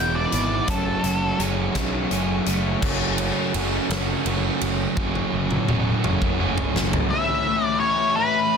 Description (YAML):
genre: quiet-loud alternative rock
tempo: 56 BPM (dotted quarters)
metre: 6/8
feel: straight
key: unclear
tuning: A4 = 438 Hz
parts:
  - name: octave-fuzz lead guitar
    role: melody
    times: 0.0-1.4, 7.1-8.6 s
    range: A4 to G5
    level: -22 LUFS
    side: right 1 dB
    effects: distortion
  - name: electric guitar through a small old amp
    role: arpeggios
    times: 0.0-2.6 s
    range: E3 to G#4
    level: -29 LUFS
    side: left 1 dB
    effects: tremolo
  - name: overdriven semi-hollow guitar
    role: riff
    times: 0.0-7.1 s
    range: F#2 to F#4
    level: -26 LUFS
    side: right 11 dB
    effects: none
  - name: thick fuzz guitar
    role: riff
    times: 0.0-8.6 s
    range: F#2 to F#4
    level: -27 LUFS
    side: left 14 dB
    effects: distortion
  - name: fuzz picked electric bass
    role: bass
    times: 0.0-7.0 s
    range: E1 to B1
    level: -27 LUFS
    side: equal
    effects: overdrive
  - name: big rock drum kit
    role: drums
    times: 0.3-7.1 s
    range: crash cymbal, hi-hat, kick drum, ride cymbal, snare drum, toms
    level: -26 LUFS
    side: equal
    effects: none
room: light reverb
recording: dense, heavily limited modern master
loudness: -20 LUFS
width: side -6 dB against mid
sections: 0.0-2.8 A section; 2.8-7.1 B section; 7.1-8.6 C section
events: lead electric guitar solo 0.0-2.8; drum fill 5.0-7.1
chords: 0.0 Eadd9; 0.7 F#madd9; 2.8 F#m; 7.1 Aadd9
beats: | 0.69 1.76 | 2.83 3.90 | 4.97 6.04 | 7.11 8.18